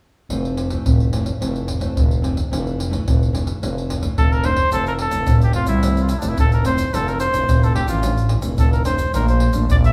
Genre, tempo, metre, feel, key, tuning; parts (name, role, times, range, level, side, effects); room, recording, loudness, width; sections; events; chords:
samba and choro; 109 BPM; 4/4; straight; F major; A4 = 440 Hz
nylon-string guitar; accompaniment; 0.3-9.9 s; F2 to D4; -28 LUFS; equal
growling FM bass; bass; 0.3-9.9 s; F1 to C2; -24 LUFS; equal
surdo, pandeiro and egg shaker; percussion; 0.3-9.9 s; -22 LUFS; equal
warm trumpet; melody; 4.2-9.9 s; D4 to E5; -24 LUFS; equal
wet stone room reverb, RT60 1.0 s; band playing live in one room, small room reverb; -19 LUFS; mono
0.3-4.7 A section; 4.7-9.9 B section
0.3 Fmaj7; 2.5 Dmadd9/F; 4.7 Fmaj7; 6.9 Dmadd9/F; 9.1 Bbmaj7